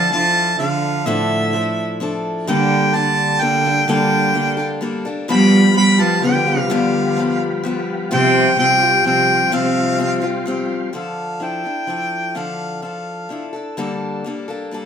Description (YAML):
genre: acoustic folk duo or small band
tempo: 128 BPM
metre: 3/4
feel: straight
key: D minor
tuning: A4 = 440 Hz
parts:
  - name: warm harmonica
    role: melody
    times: 0.0-13.5 s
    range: E5 to B5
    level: -18 LUFS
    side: equal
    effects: none
  - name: rich cello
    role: second line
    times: 0.0-10.4 s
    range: A2 to G3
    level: -20 LUFS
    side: right 4 dB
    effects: none
  - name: picked acoustic archtop guitar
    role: accompaniment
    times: 0.0-14.9 s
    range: G2 to A4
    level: -21 LUFS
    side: left 3 dB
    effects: none
  - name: tonewheel organ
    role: sustained chords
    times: 5.3-10.9 s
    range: G3 to C5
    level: -25 LUFS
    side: left 1 dB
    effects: chorus vibrato, fast rotary speaker
room: moderate studio reverb, RT60 0.8 s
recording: minimal, uncompressed stereo recording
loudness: -15 LUFS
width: side -8 dB against mid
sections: 0.0-10.9 A section; 10.9-14.9 B section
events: none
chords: 0.0 Dmadd9; 2.5 Gmadd9; 5.3 G7; 8.1 Csus4; 10.9 Dmadd9; 13.8 Gmadd9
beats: 0.14 0.61 | 1.07 1.54 2.01 | 2.48 2.95 3.42 | 3.89 4.36 4.83 | 5.30 5.77 6.24 | 6.71 7.18 7.64 | 8.12 8.59 9.05 | 9.53 10.00 10.47 | 10.94 11.41 11.89 | 12.36 12.83 13.31 | 13.78 14.26 14.73